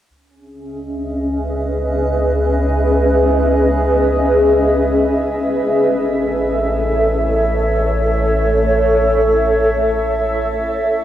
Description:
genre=ambient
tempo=free time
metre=none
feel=none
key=unclear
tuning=A4 = 442 Hz
part: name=granular cloud pad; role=sustained chords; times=0.7-11.0 s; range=C#4 to E5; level=-14 LUFS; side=equal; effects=built-in reverb, cassette tape, shimmer reverb
part: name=round analog bass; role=bass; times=0.1-11.0 s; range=A1 to C#2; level=-21 LUFS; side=equal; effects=tube saturation
room=wet studio reverb, RT60 0.5 s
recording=home recording on cassette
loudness=-14 LUFS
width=side -11 dB against mid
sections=0.1-11.0 A section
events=none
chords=0.1 C#m7; 5.7 A

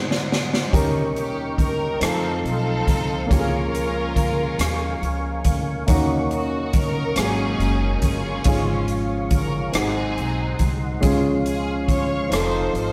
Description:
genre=slow gospel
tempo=47 BPM (dotted quarters)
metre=6/8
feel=straight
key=Db major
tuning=A4 = 440 Hz
part: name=clear symphonic string section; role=melody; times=0.0-12.9 s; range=C4 to Db5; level=-31 LUFS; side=equal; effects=none
part: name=warm grand piano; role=accompaniment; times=0.0-12.9 s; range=Ab2 to Bb4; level=-28 LUFS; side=equal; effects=none
part: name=mellow French horn section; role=sustained chords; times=0.0-12.9 s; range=Eb3 to F4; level=-35 LUFS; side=equal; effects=none
part: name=percussive tonewheel organ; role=sustained chords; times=0.0-12.9 s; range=Ab4 to Db6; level=-33 LUFS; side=equal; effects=slow rotary speaker, chorus vibrato
part: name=swinging big-band drum kit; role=drums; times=0.1-12.9 s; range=hi-hat, kick drum, rim click, snare drum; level=-25 LUFS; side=equal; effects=none
part: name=upright bass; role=bass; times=0.7-12.9 s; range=F1 to F2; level=-30 LUFS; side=equal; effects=none
room=moderate stone room reverb, RT60 1.3 s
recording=band playing live in one room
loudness=-22 LUFS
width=mono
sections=0.0-12.9 A section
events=drum fill 0.0-0.7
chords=0.0 Ab7; 0.7 Eb7; 2.0 F7; 3.3 Bbm7/Db; 5.9 Ebm7; 7.2 Ab9sus4; 8.5 Db/Ab; 9.7 Ab7; 11.0 Dbmaj7; 12.3 F7

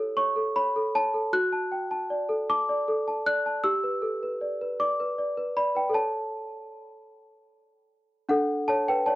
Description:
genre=classical, lullaby for celesta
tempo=52 BPM (dotted quarters)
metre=6/8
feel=straight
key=D major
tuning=A4 = 437 Hz
part: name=small celesta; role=solo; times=0.0-9.2 s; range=D4 to F#6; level=-24 LUFS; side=equal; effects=none
room=studio reverb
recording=dry, close 1970s-style studio recording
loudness=-24 LUFS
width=side -17 dB against mid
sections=0.0-8.3 A section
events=none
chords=0.0 A7/E; 1.3 D/F#; 3.6 G; 6.0 A; 8.3 D

